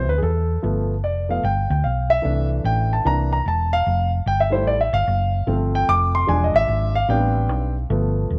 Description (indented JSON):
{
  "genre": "uptempo gospel",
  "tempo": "148 BPM",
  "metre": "4/4",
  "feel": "swing 65% on 8ths",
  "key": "C major",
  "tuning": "A4 = 440 Hz",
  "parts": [
    { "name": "warm concert grand piano", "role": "accompaniment", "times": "0.0-8.4 s", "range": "E3 to D6", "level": "-23 LUFS", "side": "equal", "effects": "none" },
    { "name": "hollow-body short-scale fingered electric bass", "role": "bass", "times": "0.0-8.4 s", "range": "Eb1 to E2", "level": "-24 LUFS", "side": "equal", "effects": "none" }
  ],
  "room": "light reverb, small room reverb",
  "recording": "worn, warbling old tape, cassette tape, warbly pitch drift",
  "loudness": "-20 LUFS",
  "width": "mono",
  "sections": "0.0-8.4 A section",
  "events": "grand piano solo 0.0-8.4",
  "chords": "0.0 D7sus2; 0.6 G9; 2.2 C6; 3.1 C7; 3.9 Fmaj9; 5.5 G7sus4; 6.3 E7b9; 7.1 Am11"
}